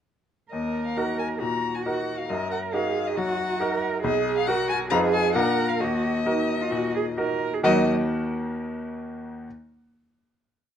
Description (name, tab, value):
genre	quick classical-period movement for piano trio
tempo	135 BPM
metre	4/4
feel	straight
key	Eb minor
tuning	A4 = 445 Hz
part	rich violin	melody	0.5-7.9 s	Eb5 to Bb5	-29 LUFS	left 6 dB	none
part	clear cello	second line	0.5-7.9 s	Gb3 to Bb4	-28 LUFS	right 6 dB	none
part	bright grand piano	accompaniment	0.5-9.5 s	B1 to Gb5	-26 LUFS	left 1 dB	none
room	moderate large studio reverb, RT60 1.0 s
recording	worn, warbling old tape, cassette tape, warbly pitch drift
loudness	-22 LUFS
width	side -9 dB against mid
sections	0.5-7.6 A section; 7.6-9.4 final chord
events	none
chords	0.5 Ebm; 2.3 Ebm/Gb; 4.0 B5; 4.9 Fm7b5; 5.3 Bb; 5.8 Ebm